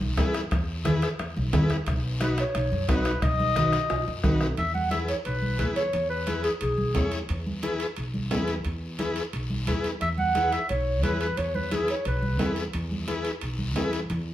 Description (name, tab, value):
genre	latin, cumbia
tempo	177 BPM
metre	4/4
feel	straight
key	E major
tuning	A4 = 441 Hz
part	upright bass	bass	0.0-14.3 s	B1 to F#2	-29 LUFS	equal	none
part	congas	percussion	0.0-14.3 s	none	-31 LUFS	right 1 dB	none
part	overdriven combo organ	accompaniment	0.2-14.0 s	D#4 to C#5	-31 LUFS	left 2 dB	none
part	bombo	percussion	0.2-4.6 s	none	-29 LUFS	left 1 dB	none
part	guiro	percussion	0.2-14.3 s	none	-42 LUFS	left 4 dB	none
part	timbales	percussion	0.2-14.3 s	none	-37 LUFS	right 3 dB	none
part	warm clarinet	melody	2.2-7.1, 10.0-12.5 s	G#4 to F#5	-27 LUFS	equal	none
room	wet large studio reverb, RT60 0.9 s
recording	heard from further back in the room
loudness	-24 LUFS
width	side -13 dB against mid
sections	0.0-4.6 A section; 4.6-14.3 B section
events	drum fill 3.9-4.6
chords	0.0 E; 1.9 B; 4.6 E